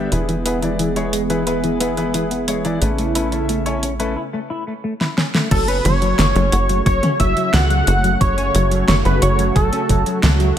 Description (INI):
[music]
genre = synthwave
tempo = 89 BPM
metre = 4/4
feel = straight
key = F# minor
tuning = A4 = 440 Hz
[part]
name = warm analog pad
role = sustained chords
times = 0.0-10.6 s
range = C#3 to G#4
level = -24 LUFS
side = right 1 dB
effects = chorus, sidechain pumping
[part]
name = clean electric guitar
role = riff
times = 0.0-10.5 s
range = E3 to F#4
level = -24 LUFS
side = left 3 dB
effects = lush chorus, low-pass filter, ping-pong delay
[part]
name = clear grand piano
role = stabs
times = 0.0-4.1 s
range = B3 to E5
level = -24 LUFS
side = left 2 dB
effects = ping-pong delay
[part]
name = tight sequencer bass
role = bass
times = 0.0-10.5 s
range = E1 to C#2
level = -20 LUFS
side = equal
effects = none
[part]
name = pop drum kit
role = drums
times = 0.1-10.5 s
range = crash cymbal, hi-hat, snare drum, toms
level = -21 LUFS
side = equal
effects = gated reverb
[part]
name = wide unison lead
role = melody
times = 5.5-10.2 s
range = A4 to F#5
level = -20 LUFS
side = equal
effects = ping-pong delay
[part]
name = FM electric piano with soft pad layer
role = second line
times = 5.5-10.2 s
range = A5 to F#6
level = -26 LUFS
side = right 2 dB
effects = chorus, tremolo, ping-pong delay
[part]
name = electronic kick drum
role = drums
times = 5.5-10.0 s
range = none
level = -19 LUFS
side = equal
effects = overdrive
[sound]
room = light reverb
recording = none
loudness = -15 LUFS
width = side -10 dB against mid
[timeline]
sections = 0.0-5.5 A section; 5.5-10.6 B section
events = drum fill 5.0-5.5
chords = 0.1 E; 2.8 Aadd9; 5.5 F#m